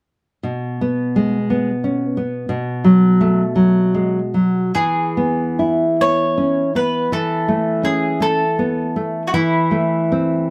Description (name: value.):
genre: romantic duo for mandolin and classical guitar.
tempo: 46-60 BPM (dotted quarters).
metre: 6/8.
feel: rubato.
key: E major.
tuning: A4 = 439 Hz.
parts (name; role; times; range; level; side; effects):
nylon-string guitar; accompaniment; 0.4-10.5 s; B2 to E4; -19 LUFS; equal; none.
bowl-back mandolin; melody; 4.7-10.5 s; E4 to C#5; -22 LUFS; equal; none.
room: light reverb.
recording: dark, warm production.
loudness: -18 LUFS.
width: mono.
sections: 0.4-4.8 A section; 4.8-10.5 B section.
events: none.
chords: 0.4 G#madd11/B; 2.5 B5; 4.8 E; 7.1 A/E; 9.3 Am/E.